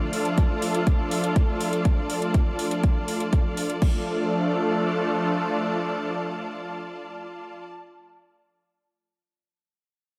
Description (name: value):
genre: melodic techno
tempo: 122 BPM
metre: 4/4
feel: straight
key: D minor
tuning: A4 = 439 Hz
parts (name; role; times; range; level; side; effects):
- sweeping resonant pad; sustained chords; 0.0-7.6 s; F3 to A4; -29 LUFS; equal; chorus, sidechain pumping
- rich symphonic string section; texture; 0.0-7.7 s; F4 to A5; -33 LUFS; equal; sidechain pumping
- deep house drum kit; drums; 0.1-3.9 s; crash cymbal, hi-hat; -38 LUFS; equal; overdrive
- electronic kick drum; drums; 0.4-3.9 s; none; -23 LUFS; equal; overdrive
room: light reverb, digital ambience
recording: none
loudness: -25 LUFS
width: mono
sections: 0.0-3.8 A section; 3.8-7.8 B section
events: none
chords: 0.0 Dm